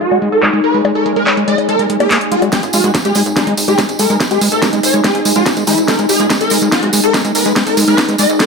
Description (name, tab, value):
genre	psychedelic trance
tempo	143 BPM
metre	4/4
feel	straight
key	unclear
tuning	A4 = 438 Hz
part	swarming rave lead	melody	0.0-8.5 s	D#4 to D#5	-16 LUFS	equal	chorus, phaser, sidechain pumping, tape echo
part	evolving wavetable pad	sustained chords	0.0-8.5 s	G#3 to D#4	-21 LUFS	left 2 dB	chorus, built-in reverb, sidechain pumping
part	drum and bass drum kit	drums	0.0-8.5 s	bongos, handclaps, hi-hat, snare drum	-17 LUFS	equal	overdrive
part	warbly tape-like pad	texture	0.0-8.5 s	D#4 to G#5	-20 LUFS	equal	chorus, built-in reverb, phaser, sidechain pumping
part	screaming distorted acid line	riff	0.1-8.5 s	G#3 to A#3	-18 LUFS	equal	distortion, chorus, auto-pan, sidechain pumping, dub echo
part	electronic kick drum	drums	2.5-8.5 s	none	-21 LUFS	right 1 dB	overdrive, high-pass filter on kick, high-pass filter on room
part	tambourine	percussion	2.5-8.5 s	none	-22 LUFS	right 4 dB	none
part	plucky analog bass	bass	2.6-8.4 s	F#1 to G#2	-25 LUFS	equal	high-pass filter
room	moderate lush hall reverb, RT60 1.6 s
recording	low-pass filter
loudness	-10 LUFS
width	side -4 dB against mid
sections	0.0-2.5 A section; 2.5-8.5 B section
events	build-up 2.5-8.5; drum fill 2.5-8.5; filter sweep on acid bass 2.5-8.5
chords	0.0 G#5